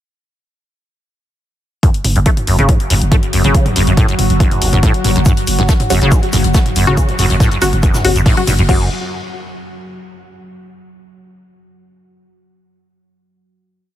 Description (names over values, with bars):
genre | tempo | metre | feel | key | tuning
driving peak-time techno | 140 BPM | 4/4 | straight | F# phrygian | A4 = 440 Hz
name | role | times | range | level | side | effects
acid bass, saw | riff | 1.8-8.9 s | F#1 to A3 | -17 LUFS | equal | ensemble chorus, sidechain pumping, tape echo
deep dark ambient pad | drone | 2.5-8.7 s | F#3 to F#4 | -23 LUFS | equal | chorus, built-in reverb, sidechain pumping
electronic kick drum | drums | 1.8-8.8 s | none | -12 LUFS | equal | overdrive, small room ambience
punchy analog drum machine | drums | 1.8-8.8 s | crash cymbal, hi-hat, toms | -20 LUFS | equal | overdrive, sidechain pumping on hats, small room ambience, sidechain pumping on toms, sidechain pumping on cymbals
growling 808-style bass | bass | 2.0-8.9 s | F#1 | -17 LUFS | equal | sidechain pumping, low-pass filter
open jazz drum kit | drums | 5.3-8.6 s | hi-hat, shaker, snare drum | -27 LUFS | left 4 dB | sidechain pumping on hats, high-pass filter on hats, small room ambience, high-pass filter on snare, sidechain pumping on perc, high-pass filter on perc, high-pass filter on room
filtered dub chord stab | stabs | 5.9-8.8 s | C#3 to F#4 | -20 LUFS | left 2 dB | phaser, sidechain pumping, tape echo
room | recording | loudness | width
small room ambience | none | -10 LUFS | side -12 dB against mid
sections
1.8-8.7 groove; 8.7-10.4 final chord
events
none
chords
1.8 F#5